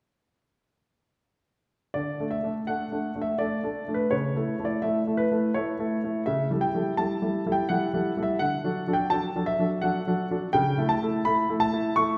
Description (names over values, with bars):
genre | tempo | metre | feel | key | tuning
classical-period piano sonatina | 84 BPM | 3/4 | rubato | D major | A4 = 440 Hz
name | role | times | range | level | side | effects
warm concert grand piano | solo | 1.9-12.2 s | C#3 to C#6 | -26 LUFS | equal | none
room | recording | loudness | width
wet recital hall reverb, RT60 1.7 s | heard from further back in the room | -27 LUFS | mono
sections
1.9-12.2 A section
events
none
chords
1.9 D5; 4.1 A/C#; 6.3 A7(no3); 8.4 D; 10.5 A/C#